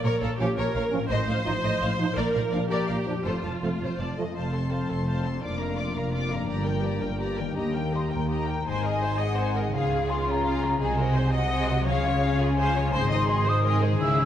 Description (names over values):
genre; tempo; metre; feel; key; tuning
cinematic, heroic adventure film score; 112 BPM (dotted quarters); 6/8; straight; F mixolydian, Ab mixolydian from 8.7 s; A4 = 440 Hz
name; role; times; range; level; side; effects
warm symphonic violin section; second line; 0.0-14.3 s; C4 to A5; -34 LUFS; left 2 dB; none
clear symphonic viola section; accompaniment; 0.0-14.3 s; F4 to Eb5; -31 LUFS; right 1 dB; none
concert harp; arpeggios; 0.0-14.3 s; F2 to Ab5; -33 LUFS; left 5 dB; none
rich studio double bass section; bass; 0.0-14.3 s; F1 to Eb2; -30 LUFS; right 2 dB; none
rich symphonic cello section; bass; 0.0-14.3 s; Eb2 to Db3; -30 LUFS; right 1 dB; none
dark symphonic violin section; melody; 0.1-14.3 s; C5 to D6; -37 LUFS; left 3 dB; none
warm trombone section; sustained chords; 0.4-4.2 s; F3 to Eb4; -32 LUFS; right 2 dB; none
dark French horn section; sustained chords; 4.3-8.5 s; A3 to G4; -33 LUFS; left 4 dB; none
small flute group; second line; 8.0-14.3 s; F5 to Fb6; -29 LUFS; left 2 dB; none
room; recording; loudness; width
wet scoring stage reverb, RT60 1.6 s; none; -23 LUFS; side -10 dB against mid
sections
0.0-4.4 A section; 4.4-8.7 B section; 8.7-14.3 C section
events
none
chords
0.0 Bbm; 1.1 F7/A; 2.2 Bb; 3.3 F; 5.4 Bb/F; 6.5 Gm; 7.6 Eb; 8.7 Ab; 9.7 Db; 10.8 Ab7/C; 11.9 Db; 12.9 Ab